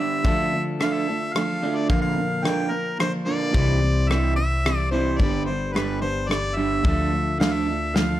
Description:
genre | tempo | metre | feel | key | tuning
folk rock and heartland rock | 109 BPM | 3/4 | straight | unclear | A4 = 441 Hz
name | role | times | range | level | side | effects
warm harmonica | melody | 0.0-8.2 s | Bb4 to G5 | -27 LUFS | equal | none
picked steel-string acoustic guitar | accompaniment | 0.0-8.2 s | G2 to C5 | -28 LUFS | left 2 dB | none
electric guitar through a small old amp | riff | 0.0-8.2 s | G2 to D4 | -26 LUFS | right 4 dB | spring reverb
natural country drum kit | drums | 0.2-8.1 s | kick drum, rim click, snare drum | -24 LUFS | left 1 dB | none
upright bass | bass | 3.5-8.2 s | G1 to D2 | -25 LUFS | equal | none
room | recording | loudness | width
light reverb, small room reverb | dark, warm production | -20 LUFS | side -13 dB against mid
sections
0.0-8.2 A section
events
none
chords
0.2 Dm; 1.9 Bb; 3.5 C; 5.2 G; 6.8 Dm

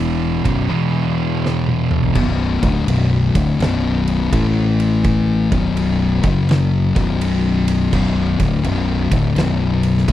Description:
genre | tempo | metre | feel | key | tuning
stoner and doom metal | 83 BPM | 4/4 | swing 65% on 8ths | B minor | A4 = 439 Hz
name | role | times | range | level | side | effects
thick fuzz guitar | riff | 0.0-10.1 s | B1 to A3 | -17 LUFS | left 4 dB | distortion
thick fuzz guitar | riff | 0.0-2.1 s | B1 to E3 | -20 LUFS | right 9 dB | distortion
sustaining fretless electric bass | bass | 0.0-10.1 s | B0 to A1 | -20 LUFS | right 1 dB | tube saturation
oversized low-tuned drum kit | drums | 0.5-10.1 s | crash cymbal, kick drum, ride cymbal, snare drum, toms | -22 LUFS | right 1 dB | none
room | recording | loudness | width
little or no reverb | dry, close 1970s-style studio recording | -15 LUFS | side -13 dB against mid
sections
0.0-2.2 A section; 2.2-10.1 B section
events
drum fill 1.4-2.2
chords
0.3 B5; 0.7 E5; 2.2 Bm; 4.3 A5; 5.4 B5; 6.1 F#5; 6.8 Bm

